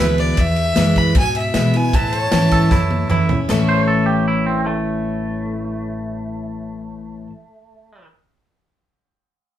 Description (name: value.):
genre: honky-tonk and classic country.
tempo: 154 BPM.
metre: 4/4.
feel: straight.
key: A major.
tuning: A4 = 440 Hz.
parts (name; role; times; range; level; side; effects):
rich fiddle; melody; 0.0-3.1 s; B4 to B5; -21 LUFS; equal; none.
twangy electric guitar; second line; 0.0-0.1, 2.5-8.1 s; A3 to C5; -24 LUFS; right 3 dB; none.
picked steel-string acoustic guitar; accompaniment; 0.0-7.3 s; E2 to E4; -19 LUFS; left 1 dB; none.
pedal steel guitar; sustained chords; 0.0-7.3 s; G#4 to E5; -28 LUFS; equal; none.
upright bass; bass; 0.0-7.3 s; A1 to B2; -24 LUFS; equal; none.
natural country drum kit; drums; 0.2-3.6 s; crash cymbal, kick drum, ride cymbal, snare drum, toms; -20 LUFS; equal; none.
room: wet studio ambience, RT60 0.5 s.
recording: band playing live in one room.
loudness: -15 LUFS.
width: side -11 dB against mid.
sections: 0.0-3.5 A section; 3.5-6.6 B section.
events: drum fill 2.7-3.5.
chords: 0.0 E; 1.9 A.